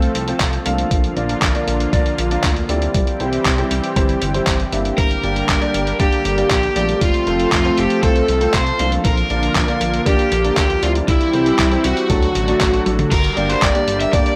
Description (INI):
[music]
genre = italo disco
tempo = 118 BPM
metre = 4/4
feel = straight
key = G dorian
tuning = A4 = 439 Hz
[part]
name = lush unison pad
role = sustained chords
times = 0.0-14.4 s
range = D3 to A4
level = -26 LUFS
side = equal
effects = chorus
[part]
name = clear baby grand piano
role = stabs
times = 0.0-14.3 s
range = F#3 to F5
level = -25 LUFS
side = equal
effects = none
[part]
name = chorused synth bass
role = bass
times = 0.0-14.2 s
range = F1 to D2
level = -25 LUFS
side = equal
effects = none
[part]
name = dusty soul sampler-style drum kit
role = drums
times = 0.0-14.4 s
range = crash cymbal, handclaps, hi-hat, toms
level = -25 LUFS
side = equal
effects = none
[part]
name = electronic kick drum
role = drums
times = 0.4-14.2 s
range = none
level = -21 LUFS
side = equal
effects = none
[part]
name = lead guitar through a small cranked amp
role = melody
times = 5.0-14.4 s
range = E4 to E5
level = -21 LUFS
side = equal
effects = overdrive, analog delay
[sound]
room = digital ambience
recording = dry, gritty hardware recording, vinyl crackle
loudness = -17 LUFS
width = mono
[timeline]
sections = 0.0-13.1 A section; 13.1-14.4 B section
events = drum fill 12.9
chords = 0.0 F; 0.9 Bb; 2.9 C; 5.0 Gm; 7.0 F; 9.0 Bb; 11.1 C; 12.1 D; 13.1 Gm